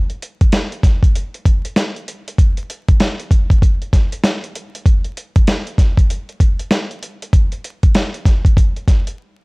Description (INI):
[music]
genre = hip hop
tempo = 97 BPM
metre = 4/4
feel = swing 62% on 16ths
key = none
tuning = none
[part]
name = dusty soul sampler-style drum kit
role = drums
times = 0.1-9.2 s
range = hi-hat, kick drum, snare drum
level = -13 LUFS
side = equal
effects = overdrive, vintage 12-bit sampler grit
[sound]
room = little or no reverb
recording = dry, gritty hardware recording, vinyl crackle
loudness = -13 LUFS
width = side -33 dB against mid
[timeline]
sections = 0.0-9.4 A section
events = break 9.2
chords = none